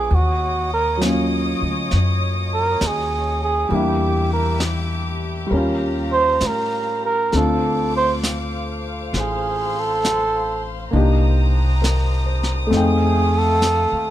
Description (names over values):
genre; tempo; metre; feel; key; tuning
jazz ballad; 67 BPM; 4/4; swing 66% on 8ths; unclear; A4 = 437 Hz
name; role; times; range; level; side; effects
trumpet with cup mute; melody; 0.0-14.1 s; Gb4 to C5; -20 LUFS; right 3 dB; none
warm concert grand piano; accompaniment; 0.0-14.1 s; Gb3 to G5; -24 LUFS; left 1 dB; none
warm chamber string section; sustained chords; 0.0-14.1 s; A3 to Eb6; -29 LUFS; left 3 dB; none
upright bass; bass; 0.0-14.1 s; A1 to A2; -21 LUFS; equal; none
vintage brush drum kit; drums; 0.1-14.1 s; brushed snare drum, hi-hat, snare drum; -28 LUFS; equal; none
room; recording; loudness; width
little or no reverb; close, detailed microphones; -17 LUFS; side -12 dB against mid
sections
0.0-14.1 A section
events
muted trumpet solo 0.0-14.1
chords
0.1 Ebm7; 3.7 Em7b5; 5.5 Eb9; 7.3 Dm7; 10.9 Cm7; 12.7 F7